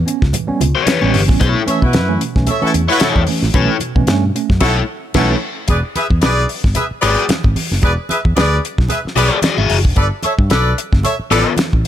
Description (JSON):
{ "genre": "funk", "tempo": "112 BPM", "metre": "4/4", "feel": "swing 56% on 16ths", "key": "E mixolydian", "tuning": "A4 = 440 Hz", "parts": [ { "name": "tine electric piano", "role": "stabs", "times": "0.0-5.3 s", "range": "A2 to C#4", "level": "-20 LUFS", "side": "right 5 dB", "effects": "medium stereo tremolo" }, { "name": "fingered electric bass", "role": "bass", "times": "0.0-11.8 s", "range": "E1 to B2", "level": "-17 LUFS", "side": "equal", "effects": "none" }, { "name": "damped 70s drum kit", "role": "drums", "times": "0.1-11.9 s", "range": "crash cymbal, hi-hat, kick drum, snare drum", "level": "-16 LUFS", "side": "equal", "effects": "none" }, { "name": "congas", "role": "percussion", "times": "0.3-11.9 s", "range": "none", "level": "-26 LUFS", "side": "right 4 dB", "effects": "none" }, { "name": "crunchy overdriven guitar", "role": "accompaniment", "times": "0.8-11.5 s", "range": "B3 to E5", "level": "-18 LUFS", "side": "left 7 dB", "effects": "phaser" }, { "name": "clear horn section", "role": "second line", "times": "1.7-11.5 s", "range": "E4 to E5", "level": "-18 LUFS", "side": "equal", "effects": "none" } ], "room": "studio ambience", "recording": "none", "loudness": "-13 LUFS", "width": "side -11 dB against mid", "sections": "0.0-5.7 A section; 5.7-11.9 B section", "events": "band accent 4.6-5.7", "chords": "0.0 A9; 1.4 B9sus4; 5.7 E9; 10.0 G9" }